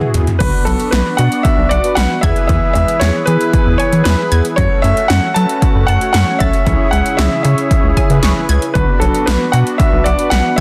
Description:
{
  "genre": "synth-pop",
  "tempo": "115 BPM",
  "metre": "4/4",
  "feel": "straight",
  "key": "unclear",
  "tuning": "A4 = 440 Hz",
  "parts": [
    { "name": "mellow synth brass", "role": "accompaniment", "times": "0.0-10.6 s", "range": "B3 to D5", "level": "-24 LUFS", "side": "equal", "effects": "chorus" },
    { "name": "80s electronic pad drums", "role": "drums", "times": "0.0-10.6 s", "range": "crash cymbal, hi-hat, kick drum, snare drum, toms", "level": "-18 LUFS", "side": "equal", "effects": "gated reverb on snare and toms, overdrive" },
    { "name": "rubbery square bass", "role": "bass", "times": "0.1-10.6 s", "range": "B1 to F#3", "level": "-17 LUFS", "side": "equal", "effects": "none" },
    { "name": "clear concert grand piano", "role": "melody", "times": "0.4-10.6 s", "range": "A4 to A5", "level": "-20 LUFS", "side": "equal", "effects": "digital delay" },
    { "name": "brassy analog pad", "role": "sustained chords", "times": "0.4-10.6 s", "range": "C#3 to B4", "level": "-25 LUFS", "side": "equal", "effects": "chorus" },
    { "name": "resonant blip pluck", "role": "arpeggios", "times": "0.4-10.6 s", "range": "D3 to A6", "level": "-28 LUFS", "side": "equal", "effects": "chorus, digital delay" }
  ],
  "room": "light reverb, digital ambience",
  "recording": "dense, heavily limited modern master",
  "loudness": "-13 LUFS",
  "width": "mono",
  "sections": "0.4-10.6 A section",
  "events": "drum fill 0.0-0.4",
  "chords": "0.4 Bm; 2.2 E; 4.6 F#m; 6.7 C#m; 8.8 Bm"
}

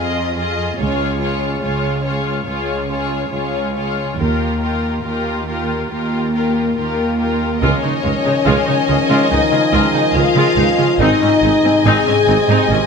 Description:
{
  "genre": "cinematic",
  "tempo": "71 BPM",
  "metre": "4/4",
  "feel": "straight",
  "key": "unclear",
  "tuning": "A4 = 440 Hz",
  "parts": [
    { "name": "rich symphonic violin section", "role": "melody", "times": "0.0-12.7 s", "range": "Bb4 to Ab5", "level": "-23 LUFS", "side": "left 5 dB", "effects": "none" },
    { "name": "warm symphonic violin section", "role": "second line", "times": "0.0-12.9 s", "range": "G4 to Ab5", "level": "-23 LUFS", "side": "left 2 dB", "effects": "none" },
    { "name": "clear symphonic viola section", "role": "accompaniment", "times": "0.0-12.8 s", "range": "Ab3 to F4", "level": "-22 LUFS", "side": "equal", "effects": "none" },
    { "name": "warm symphonic cello section", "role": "bass", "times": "0.0-12.8 s", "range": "Db2 to Db3", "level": "-21 LUFS", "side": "right 2 dB", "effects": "none" },
    { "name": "rich chamber double bass section", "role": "bass", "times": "0.8-12.8 s", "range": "Ab1 to Eb2", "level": "-22 LUFS", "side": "right 4 dB", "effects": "none" },
    { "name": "mellow French horn section", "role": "sustained chords", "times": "6.3-12.7 s", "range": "Bb3 to Ab4", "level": "-17 LUFS", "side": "left 4 dB", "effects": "none" },
    { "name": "bright trombone section", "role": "sustained chords", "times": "7.6-12.9 s", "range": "C3 to Ab3", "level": "-24 LUFS", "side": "right 4 dB", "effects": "none" },
    { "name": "warm tuba", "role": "bass", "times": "7.6-12.8 s", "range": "Ab1 to Db2", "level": "-24 LUFS", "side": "right 5 dB", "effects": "none" }
  ],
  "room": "moderate concert hall reverb, RT60 2.3 s",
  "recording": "none",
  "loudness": "-14 LUFS",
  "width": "side -5 dB against mid",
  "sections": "0.0-7.6 A section; 7.6-12.9 B section",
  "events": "build-up 0.0-7.6",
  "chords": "0.0 Fm7; 0.8 Db; 4.2 Ebadd9; 7.6 Dbadd9; 11.0 Ab"
}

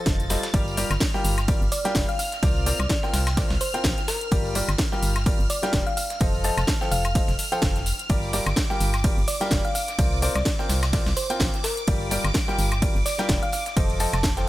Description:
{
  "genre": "piano house",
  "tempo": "127 BPM",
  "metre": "4/4",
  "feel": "swing 56% on 16ths",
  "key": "G minor",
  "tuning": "A4 = 439 Hz",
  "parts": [
    { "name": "string machine, violins", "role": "sustained chords", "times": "0.0-14.5 s", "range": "D6 to A6", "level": "-34 LUFS", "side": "equal", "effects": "ensemble chorus, sidechain pumping" },
    { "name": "clear concert grand piano", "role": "riff", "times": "0.0-14.5 s", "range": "F3 to G5", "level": "-29 LUFS", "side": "equal", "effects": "sidechain pumping, digital delay" },
    { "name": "organ-like FM bass", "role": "bass", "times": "0.1-14.5 s", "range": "F1 to C2", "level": "-26 LUFS", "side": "equal", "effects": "tube saturation, sidechain pumping" },
    { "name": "electronic kick drum", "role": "drums", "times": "0.1-14.3 s", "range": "none", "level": "-25 LUFS", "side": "equal", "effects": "overdrive" },
    { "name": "house drum kit", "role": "drums", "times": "0.1-14.5 s", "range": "hi-hat, ride cymbal, shaker, snare drum, woodblock", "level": "-29 LUFS", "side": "equal", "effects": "overdrive" },
    { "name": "tambourine", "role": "percussion", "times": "0.1-14.3 s", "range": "none", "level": "-38 LUFS", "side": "left 1 dB", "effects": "none" },
    { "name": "breakbeat sampler-style drum kit", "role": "drums", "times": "0.3-14.5 s", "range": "hi-hat, snare drum", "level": "-37 LUFS", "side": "equal", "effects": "high-pass filter on hats, high-pass filter on snare, high-pass filter on room" },
    { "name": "thumb-piano-like synth pluck", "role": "melody", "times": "1.7-14.2 s", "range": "Bb4 to A5", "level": "-31 LUFS", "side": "equal", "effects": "chorus, digital delay" }
  ],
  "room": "little or no reverb",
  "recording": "none",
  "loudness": "-21 LUFS",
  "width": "side -16 dB against mid",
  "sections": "0.0-14.5 A section",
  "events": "none",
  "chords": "0.0 F7; 0.5 Gm7; 2.4 C9sus4; 4.1 Gm7; 6.0 F7; 8.1 Gm7; 10.0 C9sus4; 11.6 Gm7; 13.5 F7"
}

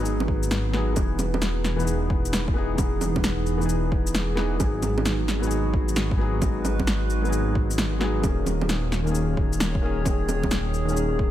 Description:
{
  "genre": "future garage",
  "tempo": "132 BPM",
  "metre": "4/4",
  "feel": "swing 66% on 16ths",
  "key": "G# minor",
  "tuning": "A4 = 439 Hz",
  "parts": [
    { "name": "felt-muted upright piano", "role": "accompaniment", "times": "0.0-11.3 s", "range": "D#3 to G#4", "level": "-29 LUFS", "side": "left 3 dB", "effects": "sidechain pumping, dub echo" },
    { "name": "warbly tape-like pad", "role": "sustained chords", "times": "0.0-11.3 s", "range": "D#3 to C#5", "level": "-31 LUFS", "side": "right 2 dB", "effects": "chorus, built-in reverb, sidechain pumping" },
    { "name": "dark detuned saw bass", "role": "bass", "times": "0.0-11.3 s", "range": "D#1 to G#1", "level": "-26 LUFS", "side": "equal", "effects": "tube saturation, sidechain pumping" },
    { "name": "electronic shaker, bongos and snare drum", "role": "drums", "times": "0.1-11.1 s", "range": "none", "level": "-28 LUFS", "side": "right 1 dB", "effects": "overdrive, studio ambience" },
    { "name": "electronic kick drum", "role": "drums", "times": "0.3-11.3 s", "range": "none", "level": "-26 LUFS", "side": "equal", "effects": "overdrive, studio ambience" }
  ],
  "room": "light reverb, digital ambience",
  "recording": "none",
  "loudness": "-22 LUFS",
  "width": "side -12 dB against mid",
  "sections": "1.0-11.3 A section",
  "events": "kick drops out 0.5-1.0",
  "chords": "0.0 G#m7; 1.0 Emaj7; 4.6 G#m7; 8.2 D#7sus4"
}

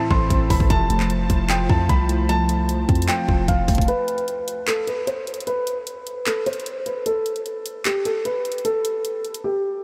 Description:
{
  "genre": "hip hop, trap",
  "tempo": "151 BPM",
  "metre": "4/4",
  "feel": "half-time",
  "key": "unclear",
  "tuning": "A4 = 443 Hz",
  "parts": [
    { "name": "felt-muted upright piano", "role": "melody", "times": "0.0-9.8 s", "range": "G4 to C6", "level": "-26 LUFS", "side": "equal", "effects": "low-pass filter, diffuse ambient delay" },
    { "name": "mellow tine electric piano", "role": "accompaniment", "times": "0.0-3.9 s", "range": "A2 to F4", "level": "-28 LUFS", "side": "equal", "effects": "phaser, low-pass filter" },
    { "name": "warm analog pad", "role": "sustained chords", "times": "0.0-3.8 s", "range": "F3 to A5", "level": "-35 LUFS", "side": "equal", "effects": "chorus" },
    { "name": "warm 808-style bass", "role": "bass", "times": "0.1-3.9 s", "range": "F1 to F2", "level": "-24 LUFS", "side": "equal", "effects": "none" },
    { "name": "trap drum kit", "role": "drums", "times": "0.1-9.4 s", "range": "handclaps, hi-hat, kick drum", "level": "-26 LUFS", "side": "equal", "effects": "overdrive" },
    { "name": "mellow brass ensemble", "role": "stabs", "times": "0.7-1.0 s", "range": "C2 to E3", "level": "-39 LUFS", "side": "equal", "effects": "none" }
  ],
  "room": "moderate huge ambient reverb, RT60 3.9 s",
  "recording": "dreamy mix soaked in reverb",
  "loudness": "-22 LUFS",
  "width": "mono",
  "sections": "0.0-3.9 A section; 3.9-9.8 B section",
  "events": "break 3.9-9.8; filter sweep 3.9-9.8; drums muted 9.4-9.8",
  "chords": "0.0 Am; 0.7 Fmaj7; 3.9 N.C."
}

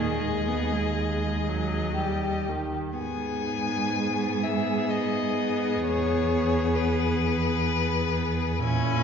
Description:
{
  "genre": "classical, slow romantic movement for string quartet",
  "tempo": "58-67 BPM",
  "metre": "3/4",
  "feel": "rubato",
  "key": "G# minor",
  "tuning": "A4 = 440 Hz",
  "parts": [
    { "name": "clear violin", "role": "melody", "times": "0.0-9.0 s", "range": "B4 to G#5", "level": "-31 LUFS", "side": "left 7 dB", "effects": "none" },
    { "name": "rich violin", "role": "second line", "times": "0.0-9.0 s", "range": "E4 to G#4", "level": "-30 LUFS", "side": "left 4 dB", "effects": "none" },
    { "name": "clear viola", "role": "accompaniment", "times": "0.0-9.0 s", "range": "D#3 to C#4", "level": "-30 LUFS", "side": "right 2 dB", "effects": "none" },
    { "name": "rich cello", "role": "bass", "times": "0.0-9.0 s", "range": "D#2 to A#2", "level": "-28 LUFS", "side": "right 3 dB", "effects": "none" }
  ],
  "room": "wet concert hall reverb, RT60 2.1 s",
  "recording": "heard from further back in the room, nothing above 7.5 kHz",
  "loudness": "-24 LUFS",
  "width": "side -7 dB against mid",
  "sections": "0.0-9.0 A section",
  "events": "none",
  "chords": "0.0 G#m/D#; 2.0 D#; 3.0 G#m; 5.8 E"
}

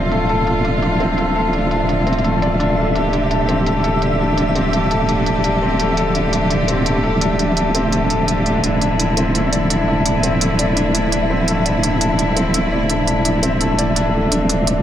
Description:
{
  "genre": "half-time drum and bass",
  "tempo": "169 BPM",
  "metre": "4/4",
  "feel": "swing 53% on 16ths, half-time",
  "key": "D minor",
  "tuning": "A4 = 441 Hz",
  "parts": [
    { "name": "rich symphonic cello section", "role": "sustained chords", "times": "0.0-14.8 s", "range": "D3 to G4", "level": "-20 LUFS", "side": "right 1 dB", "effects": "none" },
    { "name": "felt-muted upright piano", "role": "arpeggios", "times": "0.0-14.8 s", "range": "A3 to D5", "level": "-21 LUFS", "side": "left 2 dB", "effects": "low-pass filter, digital delay" },
    { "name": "deep soft wobble bass", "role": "bass", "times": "0.0-14.8 s", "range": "D1", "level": "-20 LUFS", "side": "equal", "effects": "chorus, tube saturation" },
    { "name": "flickering grainy texture", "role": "texture", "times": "0.0-14.8 s", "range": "E5", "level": "-25 LUFS", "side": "equal", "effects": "built-in reverb" },
    { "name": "electronic hi-hat", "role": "drums", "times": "0.1-14.7 s", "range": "none", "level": "-23 LUFS", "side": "right 3 dB", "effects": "low-pass filter on snare, low-pass filter on hats, low-pass filter on room" }
  ],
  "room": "moderate echo chamber reverb, RT60 1.3 s",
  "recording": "none",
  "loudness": "-15 LUFS",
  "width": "side -10 dB against mid",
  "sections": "0.0-14.8 A section",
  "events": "none",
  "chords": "0.0 Dm"
}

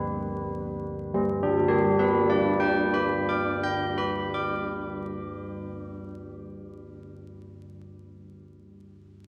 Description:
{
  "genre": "classical, tune for church bells",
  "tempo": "58 BPM",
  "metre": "4/4",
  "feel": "straight",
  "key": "G major",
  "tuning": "A4 = 440 Hz",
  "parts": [
    { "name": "old church bells", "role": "solo", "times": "0.0-6.8 s", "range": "G3 to G6", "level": "-28 LUFS", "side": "equal", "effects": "none" }
  ],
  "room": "wet cathedral reverb, RT60 4.9 s",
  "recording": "worn, warbling old tape, cassette tape, vinyl crackle, warbly pitch drift",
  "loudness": "-27 LUFS",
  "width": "mono",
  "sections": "0.0-1.1 A section; 1.1-5.3 B section",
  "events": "slowing down 0.0-1.1",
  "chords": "0.0 G"
}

